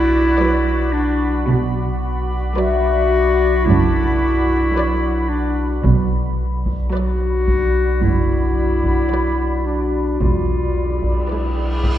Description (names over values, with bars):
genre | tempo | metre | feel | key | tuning
cinematic, suspense film score | 55 BPM | 4/4 | straight | B minor | A4 = 442 Hz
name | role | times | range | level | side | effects
clear clarinet | second line | 0.0-12.0 s | D4 to F#4 | -20 LUFS | left 2 dB | none
deep dark ambient pad | sustained chords | 0.0-12.0 s | F#4 to B5 | -25 LUFS | equal | chorus, built-in reverb
warm chamber cello section | bass | 0.0-11.1 s | E2 to B2 | -24 LUFS | right 2 dB | none
warm chamber double bass section | bass | 0.0-11.1 s | E1 to B1 | -22 LUFS | right 4 dB | none
saturated sub bass | drone | 0.0-12.0 s | B1 | -21 LUFS | equal | none
concert harp | texture | 0.0-9.7 s | A4 to C#6 | -27 LUFS | left 8 dB | none
rich chamber violin section | melody | 0.4-12.0 s | D5 | -32 LUFS | left 2 dB | none
warm chamber viola section | accompaniment | 0.4-12.0 s | F#3 to B4 | -28 LUFS | right 2 dB | none
taiko ensemble | drums | 5.8-12.0 s | none | -24 LUFS | equal | none
cymbal swell | sound effects | 11.0-12.0 s | none | -33 LUFS | equal | none
room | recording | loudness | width
wet concert hall reverb, RT60 1.9 s | none | -16 LUFS | side -11 dB against mid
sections
0.0-12.0 A section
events
cymbal swell 11.0-12.0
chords
0.0 Bm; 10.2 E7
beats
0.39 | 1.48 2.57 3.66 4.75 | 5.84 6.93 8.03 9.12 | 10.21 11.30